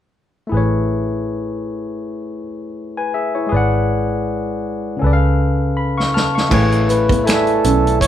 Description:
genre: R&B, neo-soul.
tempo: 80 BPM.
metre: 4/4.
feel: swing 56% on 16ths.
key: A major.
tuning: A4 = 440 Hz.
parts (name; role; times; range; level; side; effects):
barky tine electric piano; accompaniment; 0.5-8.1 s; C#3 to E#6; -19 LUFS; left 3 dB; none.
vintage muted fingered electric bass; bass; 0.5-8.1 s; G#1 to C#2; -19 LUFS; right 1 dB; none.
warm soul drum kit; drums; 6.0-8.1 s; crash cymbal, finger snaps, hi-hat, kick drum, snare drum; -19 LUFS; right 1 dB; none.
nylon-string guitar; second line; 6.5-7.8 s; A3 to C#4; -21 LUFS; right 4 dB; none.
breathy flugelhorn; melody; 6.9-8.1 s; A4 to C#5; -17 LUFS; right 3 dB; none.
room: moderate large studio reverb, RT60 0.9 s.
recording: band playing live in one room.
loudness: -15 LUFS.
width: side -10 dB against mid.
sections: 0.5-6.5 A section; 6.5-8.1 B section.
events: drum fill 5.0-6.5.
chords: 0.5 Amaj9; 3.5 G#m7b5; 5.0 C#7b13; 6.5 Amaj9.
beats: | 0.51 1.26 2.01 2.76 | 3.51 4.26 5.01 5.76 | 6.51 7.26 8.01.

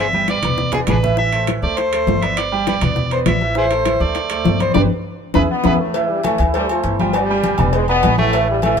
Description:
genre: latin, salsa.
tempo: 201 BPM.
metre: 4/4.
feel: straight.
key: A minor.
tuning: A4 = 445 Hz.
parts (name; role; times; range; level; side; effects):
overdriven harmonica; melody; 0.0-5.7 s; D4 to E5; -20 LUFS; left 1 dB; none.
bright concert grand piano; accompaniment; 0.0-8.8 s; E3 to G5; -22 LUFS; right 4 dB; none.
upright bass; bass; 0.0-8.8 s; E1 to E2; -21 LUFS; equal; none.
bongos and cowbell; percussion; 0.1-8.8 s; none; -26 LUFS; left 6 dB; none.
congas; percussion; 0.1-8.8 s; none; -23 LUFS; left 4 dB; none.
timbales and agogo bells; percussion; 0.3-8.8 s; none; -24 LUFS; right 1 dB; none.
clear trombone section; melody; 5.5-8.8 s; G2 to F4; -19 LUFS; left 1 dB; none.
room: light reverb.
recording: minimal, uncompressed stereo recording.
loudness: -15 LUFS.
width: side -6 dB against mid.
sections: 0.0-5.9 A section; 5.9-8.8 B section.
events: drum fill 0.0-1.2, 4.8-5.9; band accent 4.8-5.9.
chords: 0.0 G; 0.6 E5; 1.2 Am; 1.8 D5; 2.4 G; 3.0 E5; 3.6 Am; 4.2 D5; 4.8 G; 5.4 E; 5.9 A5; 6.5 Dm7; 7.1 G; 7.7 E7.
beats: 0.28 0.58 0.88 | 1.18 1.47 1.77 2.07 | 2.37 2.67 2.96 3.26 | 3.56 3.86 4.16 4.46 | 4.75 5.05 5.35 5.65 | 5.95 6.25 6.54 6.84 | 7.14 7.44 7.74 8.04 | 8.34 8.63.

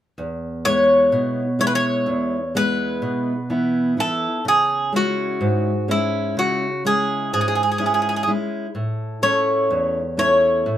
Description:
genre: greek folk.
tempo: 126 BPM (eighths).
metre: 9/8.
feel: straight.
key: E major.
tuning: A4 = 440 Hz.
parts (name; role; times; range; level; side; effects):
fingerpicked steel-string acoustic guitar; accompaniment; 0.2-10.8 s; E2 to E4; -22 LUFS; equal; none.
Greek bouzouki; melody; 0.7-10.8 s; E4 to C#5; -19 LUFS; equal; none.
room: moderate studio reverb, RT60 0.5 s.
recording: minimal, uncompressed stereo recording.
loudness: -18 LUFS.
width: side -11 dB against mid.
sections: 0.2-10.8 A section.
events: none.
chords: 0.2 E; 4.5 C#m; 8.8 A.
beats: | 0.18 0.65 1.13 1.61 2.08 2.56 3.04 3.52 3.99 | 4.47 4.94 5.42 5.90 6.37 6.85 7.33 7.80 8.28 | 8.76 9.23 9.71 10.19 10.66.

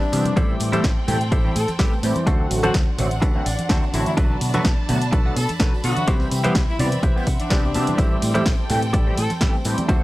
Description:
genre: filtered disco house.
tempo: 126 BPM.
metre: 4/4.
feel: swing 53% on 16ths.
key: A dorian.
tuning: A4 = 440 Hz.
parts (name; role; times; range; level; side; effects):
clear horn section; melody; 0.0-9.3 s; D4 to A4; -29 LUFS; left 2 dB; sidechain pumping, tape echo.
funky polysynth comp; accompaniment; 0.0-10.0 s; D3 to G4; -25 LUFS; equal; chorus, phaser, sidechain pumping.
clear studio violin section; sustained chords; 0.0-10.0 s; C4 to B5; -32 LUFS; equal; sidechain pumping.
tambourine and congas; percussion; 0.0-10.0 s; none; -31 LUFS; right 2 dB; sidechain pumping on perc.
direct-recorded clean electric guitar; riff; 0.1-10.0 s; D4 to A5; -28 LUFS; equal; sidechain pumping.
fingered electric bass; bass; 0.1-10.0 s; A1 to C3; -25 LUFS; equal; sidechain pumping.
punchy analog drum machine; drums; 0.1-10.0 s; hi-hat, snare drum; -29 LUFS; equal; sidechain pumping on hats.
electronic kick drum; drums; 0.4-10.0 s; none; -20 LUFS; equal; none.
room: studio reverb.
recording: dry, gritty hardware recording.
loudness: -18 LUFS.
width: side -17 dB against mid.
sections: 0.0-10.0 A section.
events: clean electric guitar fill 3.2-4.2, 6.6-8.0.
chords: 0.4 Am7; 2.3 D7; 4.2 Bm7; 6.1 Cmaj7; 8.0 Am7.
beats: | 0.37 0.84 1.32 1.79 | 2.27 2.75 3.22 3.70 | 4.18 4.65 5.13 5.60 | 6.08 6.56 7.03 7.51 | 7.99 8.46 8.94 9.41 | 9.89.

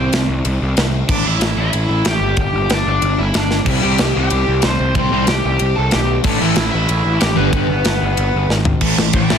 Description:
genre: punk rock.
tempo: 186 BPM.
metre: 4/4.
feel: straight.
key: A minor.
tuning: A4 = 440 Hz.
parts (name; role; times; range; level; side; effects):
overdriven semi-hollow guitar; melody; 0.0-9.4 s; B3 to C6; -19 LUFS; left 1 dB; none.
fuzz picked electric bass; bass; 0.0-9.4 s; G1 to C2; -18 LUFS; equal; overdrive.
tight metal drum kit; drums; 0.1-9.4 s; crash cymbal, kick drum, ride cymbal, snare drum, toms; -19 LUFS; equal; soft clipping on kick.
sludgy distorted guitar; riff; 3.6-9.4 s; G2 to C4; -20 LUFS; right 11 dB; overdrive.
distorted electric guitar; riff; 3.7-9.4 s; G2 to C4; -21 LUFS; left 14 dB; distortion.
room: light reverb.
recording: dense, heavily limited modern master.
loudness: -14 LUFS.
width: side -7 dB against mid.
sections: 0.0-8.8 A section.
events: half time 0.0-8.8; drum fill 3.5, 8.5-8.8.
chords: 0.0 N.C.; 1.1 A5; 2.2 G5; 3.7 C5; 6.2 A5; 7.4 G; 8.8 A5.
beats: 0.12 0.45 0.77 | 1.09 1.41 1.74 2.06 | 2.38 2.70 3.02 3.35 | 3.67 3.99 4.31 4.63 | 4.96 5.28 5.60 5.92 | 6.25 6.57 6.89 7.21 | 7.53 7.86 8.18 8.50 | 8.82 9.15.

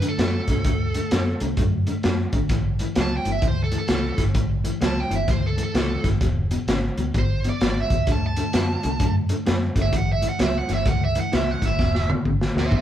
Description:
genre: electric blues shuffle.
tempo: 129 BPM.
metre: 4/4.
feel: swing 64% on 8ths.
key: A mixolydian.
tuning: A4 = 439 Hz.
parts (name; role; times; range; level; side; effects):
biting lead guitar; melody; 0.0-12.8 s; A4 to A5; -28 LUFS; right 3 dB; overdrive.
electric guitar through a small old amp; riff; 0.0-12.8 s; E2 to B3; -28 LUFS; left 2 dB; none.
vintage muted fingered electric bass; bass; 0.0-12.8 s; E1 to F#2; -26 LUFS; equal; none.
crunchy breakbeat drum kit; drums; 0.0-12.8 s; hi-hat, kick drum, snare drum, toms; -22 LUFS; equal; none.
room: little or no reverb.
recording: band playing live in one room.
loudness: -20 LUFS.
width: side -11 dB against mid.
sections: 0.0-12.8 A section.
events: drum fill 11.8-12.8.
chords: 0.0 D; 2.5 A7; 6.2 E; 8.1 D; 9.9 A7; 11.8 E.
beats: 0.18 | 0.65 1.11 1.58 2.04 | 2.50 2.97 3.43 3.90 | 4.36 4.83 5.29 5.75 | 6.22 6.68 7.15 7.61 | 8.07 8.54 9.01 9.47 | 9.93 10.40 10.86 11.33 | 11.79 12.26 12.72.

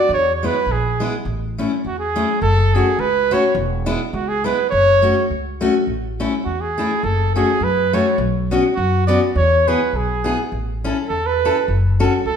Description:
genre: alpine folk, alpine dance band.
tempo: 104 BPM.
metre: 2/4.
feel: swing 55% on 8ths.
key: A major.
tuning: A4 = 442 Hz.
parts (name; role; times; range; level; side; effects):
clear flugelhorn; melody; 0.0-12.4 s; F#4 to D5; -18 LUFS; right 2 dB; none.
upright bass; bass; 0.1-12.4 s; E1 to F#2; -21 LUFS; equal; none.
fingerpicked steel-string acoustic guitar; accompaniment; 0.4-12.1 s; G#3 to A4; -21 LUFS; left 3 dB; none.
room: wet large studio reverb, RT60 1.2 s.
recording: band playing live in one room.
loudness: -16 LUFS.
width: side -7 dB against mid.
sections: 0.0-12.4 A section.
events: none.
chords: 0.1 E; 1.3 A; 2.4 F#m; 3.6 E; 4.7 F#m; 5.9 A; 7.0 F#m; 8.2 Bsus2; 9.4 E; 10.5 A; 11.7 F#m.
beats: | 0.11 0.69 | 1.27 1.85 | 2.43 3.00 | 3.57 4.14 | 4.72 5.30 | 5.88 6.47 | 7.05 7.62 | 8.19 8.77 | 9.35 9.94 | 10.52 11.11 | 11.69 12.26.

